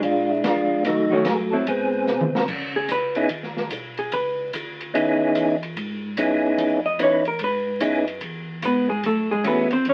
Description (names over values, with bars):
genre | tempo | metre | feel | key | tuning
soul jazz organ trio | 146 BPM | 4/4 | swing 65% on 8ths | C# minor | A4 = 441 Hz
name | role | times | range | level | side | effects
percussive tonewheel organ | melody | 0.0-9.7 s | F#3 to B4 | -23 LUFS | equal | slow rotary speaker
mellow tonewheel organ | bass | 0.0-9.9 s | A#1 to C#3 | -38 LUFS | equal | chorus vibrato, slow rotary speaker
open jazz drum kit | drums | 0.0-9.9 s | crash cymbal, hi-hat, kick drum, ride cymbal, snare drum, toms | -32 LUFS | equal | none
hollow-body jazz guitar | accompaniment | 1.1-9.9 s | D#3 to D#5 | -24 LUFS | equal | none
room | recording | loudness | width
moderate studio ambience, RT60 0.5 s | very old 78 rpm record, vinyl crackle | -23 LUFS | mono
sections
0.0-2.5 A section; 2.5-9.9 B section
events
drum fill 2.1-2.5; hollow-body jazz guitar solo 2.5-9.9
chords
0.0 A#7; 0.8 D#m7b5; 1.7 G#; 2.5 C#m9; 9.0 F#m9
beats
0.03 0.44 | 0.85 1.26 1.67 2.08 | 2.49 2.90 3.31 3.71 | 4.12 4.53 4.94 5.35 | 5.76 6.17 6.58 6.99 | 7.40 7.81 8.22 8.63 | 9.04 9.45 9.86